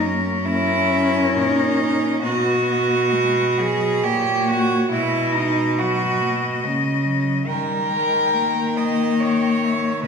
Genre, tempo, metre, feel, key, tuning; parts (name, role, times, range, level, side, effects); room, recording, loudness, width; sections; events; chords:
classical, lyrical piece for cello ensemble; 68 BPM; 3/4; rubato; B major; A4 = 440 Hz
warm cello; melody; 0.0-10.1 s; A#4 to G5; -27 LUFS; left 7 dB
warm cello; second line; 0.0-10.1 s; C#4 to D#5; -20 LUFS; right 2 dB
dark cello; accompaniment; 0.0-10.1 s; F#3 to C#4; -24 LUFS; left 4 dB
rich cello; bass; 0.0-10.1 s; F#2 to D#3; -24 LUFS; right 1 dB
wet recital hall reverb, RT60 1.5 s; recorded in a church or concert hall; -17 LUFS; side -5 dB against mid
0.0-10.1 A section
0.0 F#; 2.2 B; 4.0 A#m6; 4.9 B; 7.5 D#7